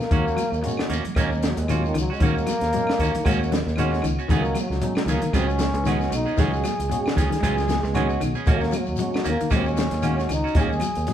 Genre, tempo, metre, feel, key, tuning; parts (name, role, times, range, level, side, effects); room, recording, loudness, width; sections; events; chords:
afrobeat; 115 BPM; 4/4; swing 56% on 16ths; Eb minor; A4 = 439 Hz
warm trombone; melody; 0.0-11.1 s; Eb3 to Ab4; -27 LUFS; equal
compact cocktail drum kit; drums; 0.0-11.1 s; hi-hat, kick drum, snare drum; -25 LUFS; equal
shekere; percussion; 0.0-11.1 s; -34 LUFS; left 3 dB
barky tine electric piano; accompaniment; 0.1-11.1 s; Ab3 to Ab4; -30 LUFS; right 2 dB
clean electric guitar; arpeggios; 0.1-11.1 s; Eb3 to Bb3; -29 LUFS; left 5 dB
clean electric guitar; stabs; 0.1-11.1 s; Gb3 to Ab4; -30 LUFS; right 5 dB
fingered electric bass; bass; 0.1-11.1 s; Cb2 to Eb2; -26 LUFS; equal
congas; percussion; 0.1-11.1 s; -34 LUFS; right 1 dB
claves; percussion; 0.4-11.0 s; -42 LUFS; left 1 dB
moderate large studio reverb, RT60 1.2 s; band playing live in one room; -20 LUFS; side -10 dB against mid
0.0-11.1 A section
trombone solo 0.0-11.1
0.1 Ebm7; 4.3 Db7sus4; 8.5 Ebm7